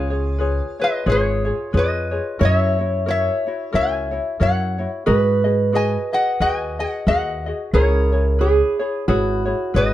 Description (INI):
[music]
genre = Hawaiian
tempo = 90 BPM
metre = 4/4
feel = swing 58% on 8ths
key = unclear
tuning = A4 = 440 Hz
[part]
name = metal-body resonator slide guitar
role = melody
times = 0.0-9.9 s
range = G#4 to G#5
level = -22 LUFS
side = left 2 dB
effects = plate reverb
[part]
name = fingerpicked old ladder-braced acoustic guitar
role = second line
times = 0.0-9.9 s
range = F#4 to C#5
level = -23 LUFS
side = right 4 dB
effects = none
[part]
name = ukulele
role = accompaniment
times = 0.0-9.9 s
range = E4 to D#5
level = -25 LUFS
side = left 4 dB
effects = none
[part]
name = upright bass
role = bass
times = 0.0-9.9 s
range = G#1 to G#2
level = -20 LUFS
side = equal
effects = none
[sound]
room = light reverb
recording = dark, warm production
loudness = -17 LUFS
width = side -13 dB against mid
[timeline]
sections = 0.0-9.9 A section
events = none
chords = 0.0 C#7; 2.4 F#7; 5.1 G#m7; 7.7 C#m7